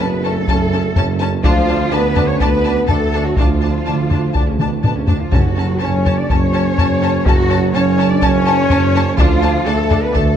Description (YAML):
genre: cinematic, epic orchestral film score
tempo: 124 BPM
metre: 4/4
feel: straight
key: F# harmonic minor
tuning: A4 = 440 Hz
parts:
  - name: warm symphonic violin section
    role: melody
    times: 0.0-10.2 s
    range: A5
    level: -30 LUFS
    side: left 4 dB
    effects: none
  - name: warm symphonic violin section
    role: second line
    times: 0.0-10.2 s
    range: A5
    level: -25 LUFS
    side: left 5 dB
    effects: none
  - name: warm symphonic viola section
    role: accompaniment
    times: 0.0-10.2 s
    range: C#4 to D4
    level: -27 LUFS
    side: equal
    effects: none
  - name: mellow French horn section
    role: sustained chords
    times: 0.0-10.4 s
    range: A2 to D4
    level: -21 LUFS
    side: left 4 dB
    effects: none
  - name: mellow tuba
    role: bass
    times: 0.0-10.4 s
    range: F#1 to D2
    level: -20 LUFS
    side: right 4 dB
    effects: none
  - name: warm symphonic cello section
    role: bass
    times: 0.0-10.4 s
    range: A3 to D5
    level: -22 LUFS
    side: right 1 dB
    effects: none
  - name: warm symphonic double bass section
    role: bass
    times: 0.0-10.4 s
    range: D2 to F#2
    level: -20 LUFS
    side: right 4 dB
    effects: none
  - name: solo taiko drums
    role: drums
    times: 0.5-10.4 s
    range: none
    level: -18 LUFS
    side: left 1 dB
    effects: none
  - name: timpani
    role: percussion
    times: 5.3-6.0 s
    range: F#2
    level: -21 LUFS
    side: equal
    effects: none
room: moderate scoring stage reverb, RT60 1.7 s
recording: dark, warm production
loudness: -13 LUFS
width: side -9 dB against mid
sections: 0.0-10.4 A section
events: drum fill 4.6-5.3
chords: 0.0 F#m; 1.4 Dm; 5.3 F#m; 9.2 Dm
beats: 0.00 0.49 0.97 | 1.45 1.92 2.40 2.89 | 3.38 3.86 4.35 4.84 | 5.33 5.82 6.30 6.78 | 7.26 7.75 8.23 8.71 | 9.19 9.67 10.15